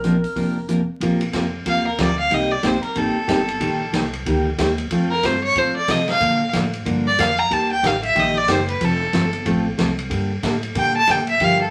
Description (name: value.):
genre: country, western swing.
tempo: 185 BPM.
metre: 4/4.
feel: swing 61% on 8ths.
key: Bb major.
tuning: A4 = 439 Hz.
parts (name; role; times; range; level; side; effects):
clean lap steel guitar; melody; 0.0-0.7 s; Bb4; -30 LUFS; equal; none.
picked steel-string acoustic guitar; accompaniment; 0.0-11.6 s; C3 to Bb4; -24 LUFS; equal; none.
upright bass; bass; 0.0-11.7 s; F1 to C3; -30 LUFS; equal; none.
swinging big-band drum kit; drums; 0.0-11.5 s; hi-hat, kick drum, ride cymbal, snare drum; -30 LUFS; equal; none.
clear fiddle; second line; 1.7-11.7 s; A4 to Bb5; -22 LUFS; equal; none.
room: wet studio ambience, RT60 0.5 s.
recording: vinyl crackle.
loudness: -20 LUFS.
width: mono.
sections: 0.0-1.0 A section; 1.0-11.7 B section.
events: fiddle solo 1.0-11.7.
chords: 0.0 Bbadd9; 1.0 Bbsus2; 2.3 Cm7; 3.6 Eb; 4.9 F; 6.2 Bb; 7.5 Eb; 8.8 F; 10.1 Gmadd9.